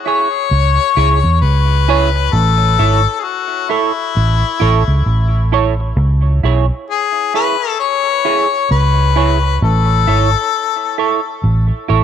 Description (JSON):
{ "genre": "reggae", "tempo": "66 BPM", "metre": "4/4", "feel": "swing 60% on 16ths", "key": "C# minor", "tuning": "A4 = 440 Hz", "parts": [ { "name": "warm harmonica", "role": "melody", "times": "0.1-11.4 s", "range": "E4 to C#5", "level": "-16 LUFS", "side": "left 11 dB", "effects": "tape echo" }, { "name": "semi-hollow electric guitar", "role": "accompaniment", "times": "0.1-12.0 s", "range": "E4 to C#5", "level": "-20 LUFS", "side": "right 10 dB", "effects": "analog chorus, tape echo" }, { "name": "vintage muted fingered electric bass", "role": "bass", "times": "0.5-12.0 s", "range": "G#1 to E2", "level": "-13 LUFS", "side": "right 1 dB", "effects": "none" } ], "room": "light reverb, studio reverb", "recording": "1960s-style stereo with parts hard left and right", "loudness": "-12 LUFS", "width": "side -9 dB against mid", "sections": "0.0-12.0 A section", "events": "none", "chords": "0.0 C#m; 2.3 A; 6.0 C#m; 9.6 A" }